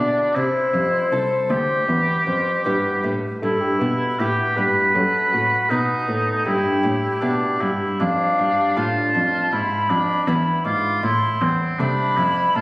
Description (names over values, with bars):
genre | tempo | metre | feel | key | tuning
classical, baroque-style sonata movement with continuo | 79 BPM | 4/4 | straight | A minor | A4 = 440 Hz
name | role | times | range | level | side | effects
concert flute | melody | 0.0-12.6 s | F#4 to D6 | -22 LUFS | left 1 dB | none
clear oboe | second line | 0.0-12.6 s | C4 to B4 | -22 LUFS | right 1 dB | none
lute | accompaniment | 0.0-12.6 s | D2 to A4 | -28 LUFS | equal | none
rich cello | bass | 0.0-12.6 s | C2 to C3 | -24 LUFS | equal | none
room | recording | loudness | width
moderate scoring stage reverb, RT60 1.9 s | recorded on a phone in the room, studio reverb | -18 LUFS | side -22 dB against mid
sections
0.0-12.6 A section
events
none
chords
0.4 Am; 1.9 Em; 4.9 B7/F#; 6.5 Em/G; 8.0 Dm/F; 9.5 E7; 11.0 Am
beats
0.36 1.12 | 1.88 2.65 3.42 4.19 | 4.95 5.70 6.46 7.22 | 8.00 8.76 9.52 10.27 | 11.03 11.79 12.55